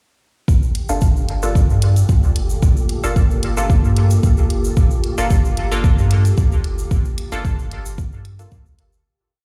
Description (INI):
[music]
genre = dub techno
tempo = 112 BPM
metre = 4/4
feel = swing 53% on 16ths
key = G minor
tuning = A4 = 440 Hz
[part]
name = deep dark ambient pad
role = sustained chords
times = 1.8-9.0 s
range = Bb3 to A4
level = -32 LUFS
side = equal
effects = chorus, built-in reverb, sidechain pumping
[part]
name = pure sine sub bass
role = bass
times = 0.5-9.0 s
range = G1 to G2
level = -20 LUFS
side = equal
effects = sidechain pumping
[part]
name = electronic kick drum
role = drums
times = 0.5-8.6 s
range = none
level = -18 LUFS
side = equal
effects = none
[part]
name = tube shaker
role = percussion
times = 0.5-9.0 s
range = none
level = -38 LUFS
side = equal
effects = none
[part]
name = wind-like tuned noise texture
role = texture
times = 0.9-9.1 s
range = G4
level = -36 LUFS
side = equal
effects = built-in reverb, sidechain pumping
[part]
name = electronic hi-hat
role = drums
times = 0.8-8.9 s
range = none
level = -32 LUFS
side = equal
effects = none
[part]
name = filtered dub chord stab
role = stabs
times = 0.9-8.5 s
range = Bb3 to A4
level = -29 LUFS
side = equal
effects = chorus, phaser, sidechain pumping, dub echo
[sound]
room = digital ambience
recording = played on a big sound system in a bare room, stone room reverb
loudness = -17 LUFS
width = mono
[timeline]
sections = 0.5-9.1 groove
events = fade-out 6.2-9.1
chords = 0.5 Gm9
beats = | 0.48 1.02 1.55 2.09 | 2.63 3.16 3.70 4.23 | 4.77 5.30 5.84 6.38 | 6.91 7.45 7.98 8.52